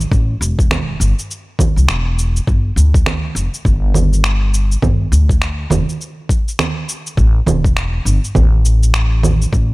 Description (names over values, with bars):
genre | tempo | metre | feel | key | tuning
organic downtempo | 102 BPM | 4/4 | swing 60% on 16ths | unclear | A4 = 440 Hz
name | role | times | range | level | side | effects
upright bass | bass | 0.0-9.7 s | E1 to D2 | -14 LUFS | equal | none
electronic shaker, finger snaps and congas | drums | 0.0-9.7 s | none | -19 LUFS | right 3 dB | overdrive, small room ambience
electronic kick drum | drums | 0.1-9.7 s | none | -15 LUFS | equal | overdrive, small room ambience
room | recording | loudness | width
little or no reverb | none | -13 LUFS | side -21 dB against mid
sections
0.0-9.7 A section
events
none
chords
none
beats
| 0.12 0.70 1.29 1.88 | 2.47 3.06 3.65 4.23 | 4.82 5.41 6.00 6.59 | 7.17 7.76 8.35 8.94 | 9.53